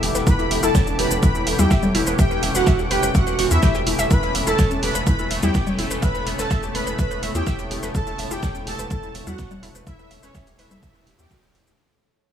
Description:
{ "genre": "melodic techno", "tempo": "125 BPM", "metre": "4/4", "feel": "straight", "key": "unclear", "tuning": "A4 = 438 Hz", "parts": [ { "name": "sweeping resonant pad", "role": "sustained chords", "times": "0.0-11.7 s", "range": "E3 to G4", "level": "-30 LUFS", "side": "left 1 dB", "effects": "chorus, sidechain pumping" }, { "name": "warbly dusty pluck", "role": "arpeggios", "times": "0.0-11.8 s", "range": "B3 to E5", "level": "-28 LUFS", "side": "equal", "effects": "chorus, vintage 12-bit sampler grit, sidechain pumping, dub echo" }, { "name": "gritty driven synth bass", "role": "bass", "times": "0.0-11.7 s", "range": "E1 to E2", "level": "-26 LUFS", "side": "equal", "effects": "distortion, tube saturation, sidechain pumping" }, { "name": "deep reggae drum kit", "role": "drums", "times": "0.0-11.8 s", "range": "hi-hat, snare drum", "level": "-36 LUFS", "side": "right 4 dB", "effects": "sidechain pumping on hats, high-pass filter on hats, high-pass filter on snare, high-pass filter on room" }, { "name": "electronic hi-hat, shaker and congas", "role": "drums", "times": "0.0-11.8 s", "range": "none", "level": "-26 LUFS", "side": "equal", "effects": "none" }, { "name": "granular cloud pad", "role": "texture", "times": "0.0-11.8 s", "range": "E4 to D6", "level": "-31 LUFS", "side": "equal", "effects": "built-in reverb, sidechain pumping" }, { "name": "expressive portamento lead", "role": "melody", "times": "0.3-11.4 s", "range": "C#4 to B4", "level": "-27 LUFS", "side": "right 1 dB", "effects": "wide subtle chorus, vintage 12-bit sampler grit, dub echo" }, { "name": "soft supersaw", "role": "second line", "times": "0.3-11.4 s", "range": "C#5 to B5", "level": "-30 LUFS", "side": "equal", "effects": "sidechain pumping, dub echo" }, { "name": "electronic kick drum", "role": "drums", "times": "0.3-11.4 s", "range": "none", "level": "-20 LUFS", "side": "equal", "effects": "none" } ], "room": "digital ambience", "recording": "small room ambience", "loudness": "-18 LUFS", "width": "side -9 dB against mid", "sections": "0.0-11.8 A section", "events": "drop 0.0-11.8; fade-out 4.1-11.8", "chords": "0.0 Em7; 4.1 Aadd9/E", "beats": "| 0.27 0.75 1.23 1.71 | 2.19 2.67 3.15 3.63 | 4.11 4.59 5.07 5.55 | 6.03 6.51 6.99 7.47 | 7.95 8.43 8.91 9.39 | 9.87 10.35 10.83 11.31" }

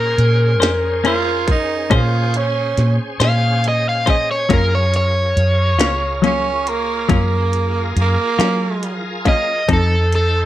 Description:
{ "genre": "slow blues", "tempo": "46 BPM (dotted quarters)", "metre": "12/8", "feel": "straight", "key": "Bb minor", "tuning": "A4 = 440 Hz", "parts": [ { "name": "overdriven electric guitar", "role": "melody", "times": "0.0-10.5 s", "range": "A4 to F5", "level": "-19 LUFS", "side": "equal", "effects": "none" }, { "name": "bright tonewheel organ", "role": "sustained chords", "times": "0.0-10.5 s", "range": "Db4 to C5", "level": "-27 LUFS", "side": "equal", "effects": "chorus vibrato, slow rotary speaker" }, { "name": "vintage muted fingered electric bass", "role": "bass", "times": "0.0-10.5 s", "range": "Db2 to Gb3", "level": "-18 LUFS", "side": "equal", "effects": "none" }, { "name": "minimal click drum kit", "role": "drums", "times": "0.2-10.3 s", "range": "hi-hat, kick drum, snare drum", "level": "-19 LUFS", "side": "equal", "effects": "none" }, { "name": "semi-hollow electric guitar", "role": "accompaniment", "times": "0.6-9.9 s", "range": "F3 to C5", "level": "-19 LUFS", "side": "left 6 dB", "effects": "tremolo" }, { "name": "growling tenor saxophone", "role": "second line", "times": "1.1-9.0 s", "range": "Bb3 to F4", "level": "-20 LUFS", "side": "right 5 dB", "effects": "slapback echo" } ], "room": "light reverb", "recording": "none", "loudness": "-14 LUFS", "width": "side -13 dB against mid", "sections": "0.0-10.5 A section", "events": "none", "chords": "0.0 Bbm9; 4.5 Gbmaj7; 9.7 F7", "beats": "0.61 1.91 3.21 | 4.50 5.80 7.09 8.38 | 9.68" }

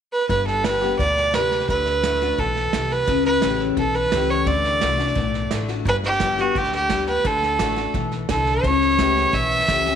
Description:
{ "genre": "honky-tonk and classic country", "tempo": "173 BPM", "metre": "4/4", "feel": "straight", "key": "G major", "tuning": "A4 = 435 Hz", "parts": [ { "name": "clear fiddle", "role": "melody", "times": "0.1-10.0 s", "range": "F#4 to E5", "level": "-20 LUFS", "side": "right 3 dB", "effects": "none" }, { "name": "picked steel-string acoustic guitar", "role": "accompaniment", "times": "0.3-10.0 s", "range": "G2 to G4", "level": "-25 LUFS", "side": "left 10 dB", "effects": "none" }, { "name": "upright bass", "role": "bass", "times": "0.3-10.0 s", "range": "G1 to D2", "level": "-27 LUFS", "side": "equal", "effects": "none" }, { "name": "soft brush drum kit", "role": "drums", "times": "0.3-9.9 s", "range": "hi-hat, kick drum, snare drum", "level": "-28 LUFS", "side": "right 4 dB", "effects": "none" } ], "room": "moderate echo chamber reverb, RT60 2.2 s", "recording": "1960s-style stereo", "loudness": "-18 LUFS", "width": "side -8 dB against mid", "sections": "0.3-5.9 A section; 5.9-10.0 B section", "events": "none", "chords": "0.3 G; 1.7 D; 3.1 A7; 4.5 D; 5.9 G; 7.3 D; 8.6 A7/C#", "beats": "| 0.30 0.65 1.00 1.34 | 1.69 2.04 2.39 2.73 | 3.08 3.43 3.78 4.12 | 4.47 4.82 5.17 5.52 | 5.86 6.21 6.56 6.91 | 7.25 7.60 7.95 8.29 | 8.64 8.99 9.34 9.68" }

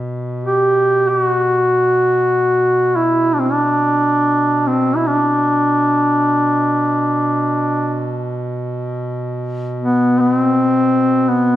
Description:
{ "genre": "caucasian folk, Caucasian lament", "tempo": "free time", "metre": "none", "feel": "none", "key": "B phrygian", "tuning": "A4 = 439 Hz", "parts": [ { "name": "warm duduk", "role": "drone", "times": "0.0-11.6 s", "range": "B2", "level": "-23 LUFS", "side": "equal", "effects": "none" }, { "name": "mellow duduk", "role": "melody", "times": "0.4-11.6 s", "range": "B3 to G4", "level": "-14 LUFS", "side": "equal", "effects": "slapback echo" } ], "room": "moderate scoring stage reverb, RT60 2.0 s", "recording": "none", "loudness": "-14 LUFS", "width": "side -13 dB against mid", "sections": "0.0-11.6 A section", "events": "slowing down 7.3-11.6", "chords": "none", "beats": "free time" }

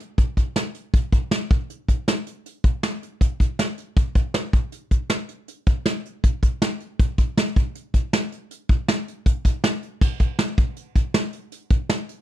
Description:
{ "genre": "indie pop", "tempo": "159 BPM", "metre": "4/4", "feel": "straight", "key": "none", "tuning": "none", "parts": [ { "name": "soft brush drum kit", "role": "drums", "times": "0.0-12.2 s", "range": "crash cymbal, hi-hat, kick drum, snare drum", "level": "-19 LUFS", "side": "equal", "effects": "none" } ], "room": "little or no reverb", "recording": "none", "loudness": "-20 LUFS", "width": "side -13 dB against mid", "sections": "0.0-10.0 A section; 10.0-12.2 B section", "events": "none", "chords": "none", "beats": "0.18 0.56 | 0.94 1.32 1.70 2.07 | 2.45 2.83 3.21 3.59 | 3.97 4.34 4.72 5.10 | 5.48 5.86 6.24 6.61 | 6.99 7.37 7.75 8.12 | 8.50 8.88 9.26 9.63 | 10.01 10.39 10.77 11.14 | 11.52 11.90" }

